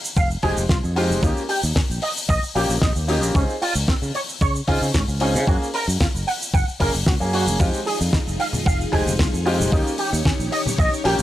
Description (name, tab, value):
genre	nu-disco, nu disco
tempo	113 BPM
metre	4/4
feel	straight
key	F minor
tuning	A4 = 441 Hz
part	damped 70s drum kit	drums	0.0-11.2 s	hi-hat, shaker, snare drum	-26 LUFS	left 2 dB	small room ambience
part	electric guitar with an envelope filter	riff	0.2-11.2 s	C4 to Gb5	-26 LUFS	right 2 dB	ensemble chorus, analog delay
part	fingered electric bass	bass	0.2-11.2 s	F1 to Db3	-24 LUFS	equal	sidechain pumping
part	electronic kick drum	drums	0.2-10.9 s	none	-20 LUFS	equal	small room ambience
part	warm baby grand piano	accompaniment	0.4-11.2 s	Ab3 to Ab4	-25 LUFS	left 1 dB	sidechain pumping, analog delay
part	string machine, full ensemble	sustained chords	7.6-11.2 s	Eb4 to Db5	-29 LUFS	left 1 dB	ensemble chorus, sidechain pumping
part	congas	percussion	8.5-10.8 s	none	-28 LUFS	left 1 dB	none
room	small room ambience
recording	dry, gritty hardware recording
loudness	-18 LUFS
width	side -14 dB against mid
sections	0.0-11.2 A section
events	none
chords	0.0 Fm9; 1.2 Eb9; 3.4 Dbmaj7; 5.5 Gbmaj7; 7.6 Fm9; 9.7 Eb9